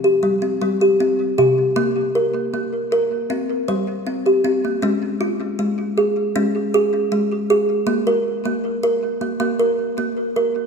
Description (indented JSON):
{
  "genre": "world meditative, meditative tuned percussion",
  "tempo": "79 BPM",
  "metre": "4/4",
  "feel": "straight",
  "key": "unclear",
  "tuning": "A4 = 440 Hz",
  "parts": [
    { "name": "kalimba", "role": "solo", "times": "0.0-10.7 s", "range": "C3 to C5", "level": "-17 LUFS", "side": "equal", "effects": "tape echo" }
  ],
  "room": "wet concert hall reverb, RT60 2.1 s",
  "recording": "none",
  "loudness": "-17 LUFS",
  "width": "side -5 dB against mid",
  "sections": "0.0-4.8 A section; 4.8-10.7 B section",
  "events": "none",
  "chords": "0.0 C5; 1.8 N.C.; 3.3 C5; 4.8 Db; 7.9 N.C.",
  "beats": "0.23 1.00 | 1.77 2.53 3.30 4.06 | 4.83 5.59 6.35 7.12 | 7.88 8.64 9.40 10.17"
}